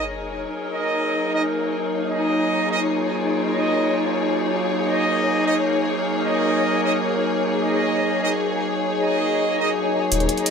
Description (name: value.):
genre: dark technical drum and bass.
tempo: 174 BPM.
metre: 4/4.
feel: straight.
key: Eb minor.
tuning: A4 = 441 Hz.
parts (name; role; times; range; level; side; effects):
metallic inharmonic drone; sustained chords; 0.0-10.5 s; Gb3 to Bb4; -24 LUFS; right 1 dB; chorus, built-in reverb.
clear brass ensemble; stabs; 0.0-10.5 s; Eb4 to Eb5; -25 LUFS; right 2 dB; low-pass filter, digital delay.
sub drop, swell and riser; sound effects; 0.0-0.5, 9.5-10.5 s; none; -30 LUFS; equal; none.
dark studio string section; texture; 0.0-10.5 s; Eb4 to Db5; -23 LUFS; left 3 dB; none.
phased detuned saw bass; bass; 10.1-10.3 s; Eb1; -23 LUFS; equal; phaser, overdrive.
electronic hi-hat; drums; 10.1-10.5 s; none; -24 LUFS; right 1 dB; overdrive, low-pass filter on snare, low-pass filter on hats, low-pass filter on room.
room: moderate plate reverb, RT60 2.1 s.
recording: none.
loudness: -19 LUFS.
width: side -6 dB against mid.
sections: 0.0-10.1 A section.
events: impact 0.0-0.5; swell 9.5-10.1.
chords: 0.0 Ebm.